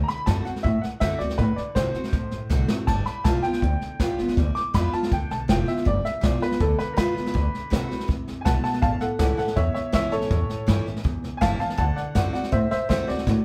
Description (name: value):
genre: rockabilly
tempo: 162 BPM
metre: 4/4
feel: straight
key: D mixolydian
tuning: A4 = 440 Hz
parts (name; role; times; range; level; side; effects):
- clear upright piano; melody; 0.0-13.4 s; F#4 to D6; -30 LUFS; equal; none
- picked steel-string acoustic guitar; accompaniment; 0.0-13.4 s; E2 to F#4; -32 LUFS; equal; none
- upright bass; bass; 0.0-13.4 s; F1 to C3; -28 LUFS; equal; none
- jazz brush drum kit; drums; 0.1-13.4 s; hi-hat, kick drum, snare drum, splash cymbal; -29 LUFS; equal; none
room: moderate studio reverb, RT60 0.7 s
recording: band playing live in one room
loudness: -24 LUFS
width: mono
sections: 0.0-13.4 A section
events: upright piano solo 0.0-13.4; drum fill 2.5-2.9, 13.3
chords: 0.0 D7; 2.9 G7; 7.3 D7; 8.8 A7; 11.8 D7